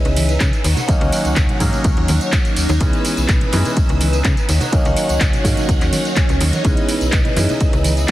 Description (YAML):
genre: filtered disco house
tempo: 125 BPM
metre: 4/4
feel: straight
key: C# dorian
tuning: A4 = 436 Hz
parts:
  - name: clear baby grand piano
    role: accompaniment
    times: 0.0-8.1 s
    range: D#3 to D#4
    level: -22 LUFS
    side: right 1 dB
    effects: phaser, sidechain pumping
  - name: string machine, full ensemble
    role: sustained chords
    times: 0.0-8.1 s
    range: D#4 to E6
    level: -25 LUFS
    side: left 1 dB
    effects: phaser, ensemble chorus, sidechain pumping
  - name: slap-like FM bass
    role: bass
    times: 0.0-8.1 s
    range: B1 to C#3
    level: -18 LUFS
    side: equal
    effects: sidechain pumping
  - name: house drum kit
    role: drums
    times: 0.1-8.1 s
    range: handclaps, hi-hat, ride cymbal, tambourine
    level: -23 LUFS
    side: right 1 dB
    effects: sidechain pumping on hats, small room ambience, sidechain pumping on cymbals, sidechain pumping on perc
  - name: tambourine and congas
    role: percussion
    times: 0.1-8.1 s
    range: none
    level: -28 LUFS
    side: right 1 dB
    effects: sidechain pumping on perc
  - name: electronic kick drum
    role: drums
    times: 0.4-8.1 s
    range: none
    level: -17 LUFS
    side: equal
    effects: small room ambience
  - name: swell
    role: sound effects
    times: 5.9-6.6 s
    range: none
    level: -29 LUFS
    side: right 2 dB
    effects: none
room: little or no reverb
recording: heavily compressed radio sound, multiband compression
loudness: -14 LUFS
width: side -15 dB against mid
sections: 0.0-8.1 A section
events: swell 5.9-6.6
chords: 0.0 C#m9; 0.6 D#m7; 2.8 C#m9; 4.5 D#m7; 6.6 C#m9